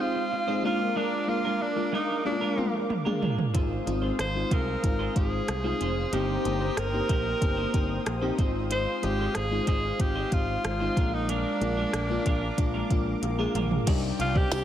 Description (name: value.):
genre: 1980s-style pop.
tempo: 93 BPM.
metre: 4/4.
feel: straight.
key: unclear.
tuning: A4 = 438 Hz.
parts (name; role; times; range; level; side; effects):
bright alto saxophone; melody; 0.0-14.6 s; D4 to C5; -30 LUFS; right 1 dB; tape echo.
FM electric piano with soft pad layer; accompaniment; 0.0-14.6 s; G3 to Ab4; -31 LUFS; left 2 dB; chorus.
lush unison pad; sustained chords; 0.0-14.6 s; Ab3 to Eb6; -35 LUFS; equal; chorus.
twelve-string electric guitar; riff; 0.0-14.6 s; Ab3 to D5; -36 LUFS; right 4 dB; lush chorus.
glitchy drum kit; drums; 2.3-14.6 s; crash cymbal, hi-hat, kick drum, rim click, snare drum, tambourine, toms; -28 LUFS; equal; none.
overdriven picked electric bass; bass; 3.5-14.6 s; F1 to C2; -31 LUFS; equal; none.
room: light reverb, digital ambience.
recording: none.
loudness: -25 LUFS.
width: side -10 dB against mid.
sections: 0.0-13.9 A section.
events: drum fill 2.3-3.5, 13.2-13.9.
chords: 0.0 Fm7/Ab; 0.6 Bb7; 3.5 Ab6; 6.1 Cm7/G; 8.4 Fm7/Ab; 11.0 Bb7; 13.9 Cmadd9.